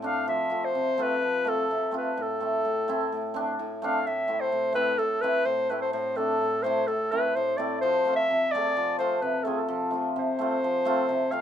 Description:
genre	klezmer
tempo	128 BPM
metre	4/4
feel	straight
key	A minor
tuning	A4 = 441 Hz
part	mellow clarinet	melody	0.0-11.4 s	G#4 to F5	-26 LUFS	left 1 dB	none
part	hammered dulcimer	accompaniment	0.0-11.4 s	A2 to G#4	-28 LUFS	equal	none
room	moderate small room ambience, RT60 0.5 s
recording	minimal, uncompressed stereo recording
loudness	-24 LUFS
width	side -9 dB against mid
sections	0.0-4.1 A section; 4.1-11.4 A section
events	none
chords	0.3 F; 2.2 Am; 7.8 F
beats	| 0.27 0.75 1.22 1.70 | 2.17 2.64 3.12 3.59 | 4.06 4.54 5.01 5.48 | 5.95 6.42 6.88 7.35 | 7.82 8.29 8.76 9.22 | 9.69 10.15 10.62 11.08

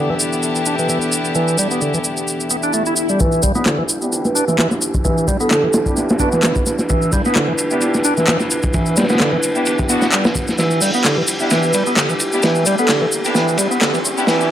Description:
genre	breakbeat, breaks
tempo	130 BPM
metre	4/4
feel	swing 55% on 16ths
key	E minor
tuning	A4 = 439 Hz
part	dark analog pad	sustained chords	0.0-14.5 s	E3 to B4	-24 LUFS	equal	chorus, sidechain pumping
part	bright tonewheel organ	riff	0.0-14.5 s	D3 to E4	-19 LUFS	equal	slow rotary speaker, low-pass filter, analog delay
part	rich chamber string section	stabs	0.0-14.4 s	B3 to G4	-23 LUFS	equal	low-pass filter, analog delay
part	electronic shaker and handclaps	drums	0.2-14.5 s	none	-20 LUFS	equal	overdrive
part	swell and riser	sound effects	2.4-3.2, 12.2-14.5 s	none	-27 LUFS	left 2 dB	none
part	dark detuned saw bass	bass	3.2-14.4 s	none	barely audible	none	none
part	crunchy breakbeat drum kit	drums	3.2-14.4 s	hi-hat, kick drum, ride cymbal, snare drum	-19 LUFS	equal	low-pass filter on kick, low-pass filter on cymbals, low-pass filter on hats, low-pass filter on snare, low-pass filter on room
part	vibraphone with soft mallets	melody	4.2-6.7, 11.6-12.9 s	A4 to B4	-22 LUFS	right 2 dB	old record sound, analog delay
room	light reverb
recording	dry, gritty hardware recording, high-pass filter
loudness	-14 LUFS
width	side -11 dB against mid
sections	0.0-3.2 A section; 3.2-14.5 B section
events	swell 2.4-3.2; build-up 3.2-14.5; filter sweep on drum 3.2-14.5; filter sweep on string section 3.2-14.5; drum fill 10.6-14.5; riser 12.2-14.5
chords	0.0 Em7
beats	0.44 0.90 | 1.36 1.82 2.28 2.74 | 3.21 3.67 4.13 4.59 | 5.05 5.51 5.97 6.44 | 6.90 7.36 7.82 8.28 | 8.74 9.21 9.67 10.13 | 10.59 11.05 11.51 11.97 | 12.44 12.90 13.36 13.82 | 14.28

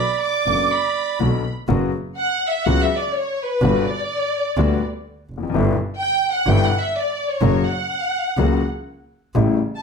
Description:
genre	tango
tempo	125 BPM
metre	4/4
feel	rubato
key	unclear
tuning	A4 = 439 Hz
part	bandoneon	melody	0.0-1.2 s	D5	-21 LUFS	right 7 dB	none
part	warm studio violin section	second line	0.0-9.8 s	B4 to D6	-22 LUFS	equal	none
part	warm grand piano	accompaniment	0.5-9.6 s	F#1 to F#4	-22 LUFS	left 6 dB	none
part	clear double bass	bass	0.5-9.6 s	E#1 to D2	-21 LUFS	right 2 dB	none
room	wet large studio reverb, RT60 0.9 s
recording	none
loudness	-18 LUFS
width	side -5 dB against mid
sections	0.0-1.7 A section; 1.7-9.8 B section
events	violin section solo 1.7-9.8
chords	0.0 Bm; 1.7 F#sus4; 3.6 Gmaj7; 5.5 Em7/G; 7.4 F#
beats	0.24 0.72 1.21 | 1.70 2.18 2.67 3.15 | 3.62 4.10 4.58 5.05 | 5.53 6.00 6.47 6.95 | 7.42 7.90 8.39 8.87 | 9.36

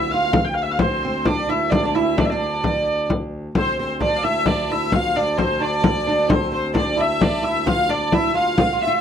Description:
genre	medieval dance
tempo	88 BPM (dotted quarters)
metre	6/8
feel	straight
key	D minor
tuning	A4 = 445 Hz
part	rich hurdy-gurdy	melody	0.0-9.0 s	C5 to G5	-22 LUFS	equal	none
part	oud	second line	0.0-9.0 s	C4 to F4	-24 LUFS	right 6 dB	none
part	clear viola da gamba	drone	0.0-9.0 s	D2	-28 LUFS	equal	none
part	frame drum	percussion	0.1-8.9 s	none	-20 LUFS	left 2 dB	none
part	clear fiddle	second line	3.6-9.0 s	C5 to F5	-28 LUFS	left 5 dB	none
room	light reverb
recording	dry, close 1970s-style studio recording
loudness	-17 LUFS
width	side -8 dB against mid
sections	0.0-3.6 A section; 3.6-9.0 A section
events	none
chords	none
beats	0.11 | 0.80 1.49 | 2.18 2.86 | 3.55 4.24 | 4.92 5.61 | 6.29 6.97 | 7.66 8.34

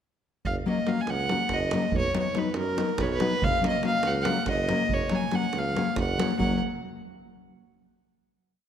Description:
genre	balkan folk, Balkan wedding band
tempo	282 BPM (eighths)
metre	7/8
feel	straight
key	F# major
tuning	A4 = 441 Hz
part	warm tuba	bass	0.4-6.6 s	F#1 to F#2	-32 LUFS	right 1 dB	none
part	davul	percussion	0.4-6.6 s	none	-32 LUFS	right 3 dB	none
part	rich fiddle	melody	0.5-6.6 s	A#4 to G#5	-28 LUFS	right 2 dB	none
part	nylon-string guitar	accompaniment	0.7-6.6 s	F#3 to F#4	-28 LUFS	left 4 dB	none
room	wet concert hall reverb, RT60 2.0 s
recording	none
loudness	-24 LUFS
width	side -9 dB against mid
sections	0.4-6.4 A section; 6.4-7.9 final chord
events	none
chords	0.4 F#; 1.9 B; 3.4 F#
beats	| 0.45 0.66 0.87 1.08 1.29 1.51 1.72 | 1.93 2.15 2.36 2.57 2.78 3.00 3.21 | 3.42 3.63 3.85 4.06 4.27 4.49 4.70 | 4.91 5.12 5.33 5.55 5.76 5.97 6.18 | 6.40

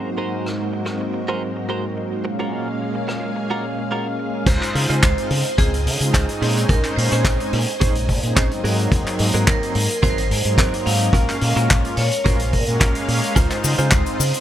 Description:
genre	nu-disco, nu disco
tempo	108 BPM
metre	4/4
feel	straight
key	Ab mixolydian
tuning	A4 = 440 Hz
part	warm analog pad	accompaniment	0.0-14.2 s	Ab2 to F5	-25 LUFS	equal	chorus, tremolo, analog delay
part	string machine, full ensemble	sustained chords	0.0-14.4 s	Gb3 to C6	-32 LUFS	equal	ensemble chorus, sidechain pumping
part	direct-recorded clean electric guitar	riff	0.0-14.1 s	Bb3 to C5	-28 LUFS	right 3 dB	analog chorus, low-pass filter, analog delay
part	vintage drum kit	drums	0.5-14.4 s	crash cymbal, handclaps, hi-hat, rim click	-24 LUFS	equal	none
part	fingered electric bass with an envelope filter	bass	4.5-14.3 s	Ab1 to Db3	-21 LUFS	equal	none
part	kick drum	drums	4.5-14.0 s	none	-20 LUFS	equal	none
part	vibraphone with medium hard mallets	melody	5.0-14.4 s	Ab4 to F5	-26 LUFS	right 2 dB	analog delay
part	cabasa	percussion	13.4-14.4 s	none	-27 LUFS	left 9 dB	none
room	light reverb, small room ambience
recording	none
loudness	-17 LUFS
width	side -11 dB against mid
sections	0.0-4.5 A section; 4.5-14.4 B section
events	filter sweep on analog synth pad 0.0-4.5; filter sweep on string machine 0.0-4.5; drop 4.5-14.4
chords	0.0 Ab9; 2.3 Gbmaj7; 4.5 Dbmaj9; 6.4 Bbm11; 8.6 Ab9; 11.1 Gbmaj7/Bb; 13.4 Dbmaj9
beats	| 0.03 0.58 1.14 1.70 | 2.25 2.81 3.36 3.92 | 4.47 5.03 5.58 6.14 | 6.70 7.25 7.81 8.36 | 8.92 9.47 10.03 10.59 | 11.14 11.70 12.25 12.81 | 13.36 13.92

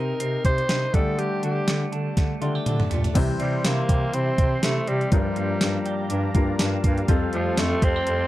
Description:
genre	1980s-style pop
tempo	122 BPM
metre	4/4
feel	swing 55% on 16ths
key	unclear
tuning	A4 = 440 Hz
part	growling alto saxophone	melody	0.0-8.3 s	F3 to C5	-27 LUFS	equal	none
part	clear concert grand piano	accompaniment	0.0-8.3 s	G2 to Eb5	-29 LUFS	left 5 dB	none
part	semi-hollow electric guitar	riff	0.0-8.3 s	E3 to G4	-32 LUFS	right 6 dB	wide subtle chorus
part	mellow bass clarinet	bass	0.0-8.2 s	F2 to D3	-27 LUFS	equal	none
part	gated 80s digital drum machine	drums	0.2-8.2 s	crash cymbal, hi-hat, kick drum, snare drum, tambourine, toms	-23 LUFS	equal	gated reverb, gated reverb snare, overdrive
part	sweeping resonant pad	sustained chords	3.2-8.3 s	G4 to C6	-34 LUFS	left 1 dB	chorus
room	little or no reverb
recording	dry, close 1970s-style studio recording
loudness	-20 LUFS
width	side -15 dB against mid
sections	0.0-3.2 A section; 3.2-8.3 B section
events	drum fill 2.2-3.2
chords	0.0 Cm; 0.9 Dsus4; 3.2 C; 5.1 Gm7; 7.1 Fadd9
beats	0.20 0.69 | 1.18 1.68 2.17 2.66 | 3.15 3.64 4.13 4.63 | 5.12 5.61 6.10 6.59 | 7.09 7.58 8.07

